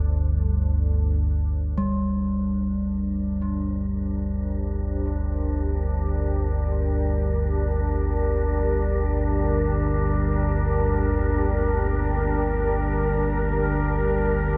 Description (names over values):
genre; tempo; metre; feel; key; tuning
dark ambient drone; free time; none; none; G minor; A4 = 442 Hz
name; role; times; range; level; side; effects
deep dark ambient pad; sustained chords; 0.0-14.6 s; G3 to C5; -31 LUFS; equal; chorus, built-in reverb
deep rumbling drone; drone; 0.0-14.6 s; G1 to D2; -26 LUFS; equal; built-in reverb
gamelan-type bronze metallophone; arpeggios; 1.8-8.3 s; G3; -31 LUFS; equal; dub echo
wind-like tuned noise texture; texture; 3.0-14.6 s; Bb4; -36 LUFS; equal; built-in reverb
room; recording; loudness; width
moderate spring reverb, RT60 2.6 s; echo-heavy mix; -24 LUFS; mono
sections
0.0-1.8 A section; 1.8-14.6 B section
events
fade-in on synth texture 1.8-14.6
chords
0.0 Gsus24; 1.8 Gm